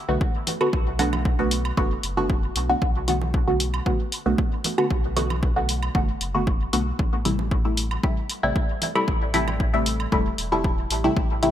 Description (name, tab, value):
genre	dub techno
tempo	115 BPM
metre	4/4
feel	straight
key	B phrygian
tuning	A4 = 440 Hz
part	filtered dub chord stab	stabs	0.1-11.5 s	C3 to F#4	-24 LUFS	equal	chorus, phaser, sidechain pumping, dub echo
part	pure sine sub bass	bass	0.1-11.5 s	E1 to B1	-28 LUFS	equal	sidechain pumping
part	electronic kick drum	drums	0.2-11.3 s	none	-24 LUFS	equal	none
part	electronic hi-hat	drums	0.5-11.5 s	none	-27 LUFS	left 2 dB	none
part	congas and woodblock	percussion	0.5-11.5 s	none	-35 LUFS	right 5 dB	overdrive, sidechain pumping on perc, dub echo
room	light reverb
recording	bright 1980s-style digital production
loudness	-21 LUFS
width	side -11 dB against mid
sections	0.0-11.5 A section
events	none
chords	0.0 Bm7; 7.0 Am7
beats	0.21 | 0.73 1.25 1.77 2.30 | 2.82 3.34 3.86 4.38 | 4.91 5.43 5.95 6.47 | 6.99 7.51 8.04 8.56 | 9.08 9.60 10.12 10.64 | 11.17